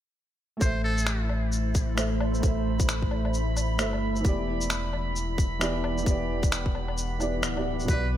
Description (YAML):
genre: future garage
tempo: 132 BPM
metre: 4/4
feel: swing 61% on 16ths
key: A dorian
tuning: A4 = 440 Hz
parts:
  - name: trumpet with metal mute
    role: melody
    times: 0.6-1.3, 7.9-8.1 s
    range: A4 to C5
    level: -34 LUFS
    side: right 1 dB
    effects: dub echo
  - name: felt-muted upright piano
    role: accompaniment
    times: 0.6-8.2 s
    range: B2 to E5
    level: -32 LUFS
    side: right 2 dB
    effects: sidechain pumping, low-pass filter, dub echo
  - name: warbly tape-like pad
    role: sustained chords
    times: 0.6-8.2 s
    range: E3 to B5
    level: -34 LUFS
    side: equal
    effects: chorus, built-in reverb, phaser, sidechain pumping
  - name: warm sub bass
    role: bass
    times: 0.6-8.2 s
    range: D1 to B1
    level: -29 LUFS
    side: equal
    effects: sidechain pumping
  - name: electronic kick drum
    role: drums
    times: 0.6-8.0 s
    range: none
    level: -25 LUFS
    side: equal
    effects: overdrive, studio reverb
  - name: electronic shaker, finger snaps and woodblock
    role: drums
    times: 0.6-8.0 s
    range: none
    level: -32 LUFS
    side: left 1 dB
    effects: overdrive, studio reverb
  - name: drifting glass-harmonics texture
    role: texture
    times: 1.4-8.2 s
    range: B5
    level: -40 LUFS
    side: right 3 dB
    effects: chorus, built-in reverb
room: light reverb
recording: none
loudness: -24 LUFS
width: side -11 dB against mid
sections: 0.6-8.2 A section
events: none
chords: 0.6 Am; 4.2 Em7